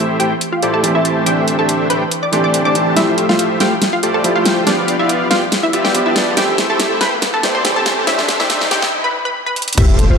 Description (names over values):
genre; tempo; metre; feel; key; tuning
future bass; 141 BPM; 4/4; swing 54% on 16ths, half-time; unclear; A4 = 440 Hz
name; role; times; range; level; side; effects
wide unison pluck; melody; 0.0-10.2 s; D4 to D6; -19 LUFS; left 1 dB; sidechain pumping, ping-pong delay
dark grand piano; accompaniment; 0.0-9.8 s; E3 to G4; -21 LUFS; right 3 dB; sidechain pumping
dense compressed supersaw; riff; 0.0-10.2 s; A3 to A5; -18 LUFS; left 1 dB; sidechain pumping, low-pass filter
dubstep drum kit; drums; 0.2-10.1 s; crash cymbal, hi-hat, snare drum; -18 LUFS; equal; none
riser and impact; sound effects; 4.4-10.2 s; none; -25 LUFS; equal; none
soft round pluck; arpeggios; 9.8-10.1 s; G4 to C5; -24 LUFS; right 1 dB; chorus, sidechain pumping
warm 808-style bass; bass; 9.8-10.2 s; F1; -13 LUFS; equal; tube saturation, sidechain pumping
electronic kick drum; drums; 9.8-9.9 s; none; -14 LUFS; equal; none
room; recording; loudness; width
wet lush hall reverb, RT60 2.1 s; dark, warm production, high-pass filter; -13 LUFS; side -6 dB against mid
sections
0.0-9.8 A section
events
build-up 0.0-9.8; filter sweep on supersaw synth 0.0-9.8; filter sweep 0.0-9.8; drum fill 3.0-8.9, 9.6; break 8.9-9.8; impact 9.8-10.2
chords
0.0 Am7; 3.0 Fmaj9; 4.7 G7; 6.4 D9sus4